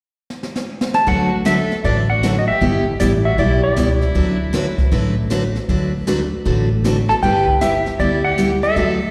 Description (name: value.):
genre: country, western swing.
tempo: 156 BPM.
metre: 4/4.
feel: swing 65% on 8ths.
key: D major.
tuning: A4 = 439 Hz.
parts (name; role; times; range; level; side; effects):
jazz brush drum kit; drums; 0.3-9.1 s; brushed snare drum, hi-hat, kick drum, snare drum; -26 LUFS; equal; none.
clean lap steel guitar; melody; 0.9-9.1 s; D5 to A5; -21 LUFS; equal; slapback echo.
clear fiddle; second line; 1.1-9.1 s; D4 to B4; -29 LUFS; equal; slapback echo.
picked steel-string acoustic guitar; accompaniment; 1.1-9.0 s; D3 to B4; -22 LUFS; equal; slapback echo.
upright bass; bass; 1.1-9.1 s; G1 to D2; -22 LUFS; equal; none.
room: moderate digital room reverb, RT60 1.2 s, small room ambience.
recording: live gig heard through the venue's PA, recital hall reverb.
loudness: -17 LUFS.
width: mono.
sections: 0.0-1.1 A section; 1.1-9.1 B section.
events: drum fill 0.3-1.1.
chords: 0.0 N.C.; 1.1 D6; 2.6 G6; 4.1 D6; 7.2 G6.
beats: 0.30 0.68 | 1.07 1.45 1.84 2.22 | 2.61 2.99 3.38 3.76 | 4.15 4.53 4.92 5.30 | 5.69 6.07 6.46 6.84 | 7.22 7.61 7.99 8.38 | 8.76.